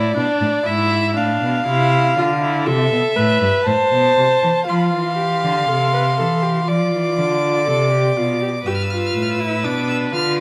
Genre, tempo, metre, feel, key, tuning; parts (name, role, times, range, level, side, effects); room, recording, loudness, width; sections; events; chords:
classical, baroque-style fugue for string quartet; 60 BPM; 4/4; straight; A4 = 440 Hz
warm violin; second line; 0.0-10.4 s; B4 to A5; -23 LUFS; equal
rich viola; accompaniment; 0.0-10.4 s; D4 to C5; -23 LUFS; equal
rich cello; bass; 0.0-10.4 s; G2 to F3; -23 LUFS; equal
rich violin; melody; 4.7-10.4 s; B5 to F6; -27 LUFS; equal
moderate recital hall reverb, RT60 1.4 s; -18 LUFS; mono
0.0-4.7 A section; 4.7-10.4 B section
0.0 Bm7; 0.7 E7/G#; 2.7 Am; 4.7 F; 6.7 Dm; 8.7 G7